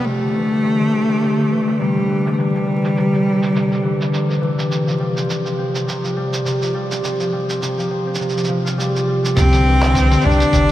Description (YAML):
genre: folktronica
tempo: 103 BPM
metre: 4/4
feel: swing 56% on 16ths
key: C major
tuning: A4 = 440 Hz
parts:
  - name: rich cello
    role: melody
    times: 0.0-4.4, 9.4-10.7 s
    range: G3 to D4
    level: -18 LUFS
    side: left 1 dB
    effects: tape echo
  - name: concert harp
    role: arpeggios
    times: 0.0-10.7 s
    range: C3 to F4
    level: -19 LUFS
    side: equal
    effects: low-pass filter, tape echo
  - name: lo-fi sampler-style drum kit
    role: drums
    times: 0.1-10.7 s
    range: handclaps, hi-hat, shaker, toms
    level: -27 LUFS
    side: right 1 dB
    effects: low-pass filter on toms, low-pass filter on perc, low-pass filter on snare, low-pass filter on hats, low-pass filter on room
  - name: warm sub bass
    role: bass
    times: 9.4-10.7 s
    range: G1 to C2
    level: -16 LUFS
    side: equal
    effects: none
  - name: kick drum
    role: drums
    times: 9.4-10.7 s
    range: none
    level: -20 LUFS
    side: equal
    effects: none
room: wet huge ambient reverb, RT60 4.4 s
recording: dreamy mix soaked in reverb, vinyl crackle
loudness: -16 LUFS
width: side -13 dB against mid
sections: 0.0-9.4 A section; 9.4-10.7 B section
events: filter sweep on drum 0.0-9.4; filter sweep on harp 0.0-9.4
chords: 0.0 Cadd9; 4.7 Fsus2; 9.4 Cadd9